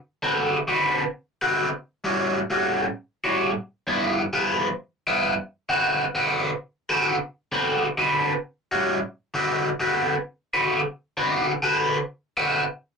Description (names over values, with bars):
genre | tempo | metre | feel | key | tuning
blues | 132 BPM | 4/4 | swing 63% on 8ths | D mixolydian | A4 = 440 Hz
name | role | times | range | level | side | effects
overdriven semi-hollow guitar | solo | 0.2-12.6 s | G2 to B4 | -21 LUFS | equal | phaser
room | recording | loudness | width
wet booth ambience, RT60 0.2 s | rough rehearsal-room recording, tube saturation | -22 LUFS | side -5 dB against mid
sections
0.0-9.3 A section; 9.3-13.0 B section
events
none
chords
0.0 D6; 2.0 A6; 3.9 G6; 5.7 D6; 8.4 A6; 9.3 D6